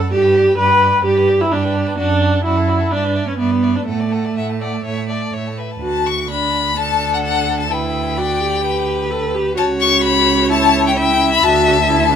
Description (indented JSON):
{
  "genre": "quick classical-period movement for string quartet",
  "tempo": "128 BPM",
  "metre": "4/4",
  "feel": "straight",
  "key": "D major",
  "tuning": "A4 = 440 Hz",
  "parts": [
    { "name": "clear violin", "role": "melody", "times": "0.0-12.2 s", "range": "D5 to C#6", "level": "-19 LUFS", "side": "left 8 dB", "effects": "none" },
    { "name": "clear violin", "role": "second line", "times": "0.0-12.2 s", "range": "F#4 to E5", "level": "-24 LUFS", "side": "left 2 dB", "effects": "none" },
    { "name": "rich cello", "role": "bass", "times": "0.0-12.2 s", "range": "C#2 to A2", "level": "-20 LUFS", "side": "right 5 dB", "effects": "none" },
    { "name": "rich viola", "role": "accompaniment", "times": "0.1-12.2 s", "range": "A3 to B4", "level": "-17 LUFS", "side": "right 1 dB", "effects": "none" }
  ],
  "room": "light reverb",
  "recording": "minimal, uncompressed stereo recording",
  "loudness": "-14 LUFS",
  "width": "side -8 dB against mid",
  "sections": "0.0-5.8 A section; 5.8-12.2 B section",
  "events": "none",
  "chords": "0.1 G; 2.0 D/F#; 2.9 Em7/G; 3.9 D/A; 5.8 D; 7.7 Em7/D; 9.6 A13/C# (rootless); 11.4 D"
}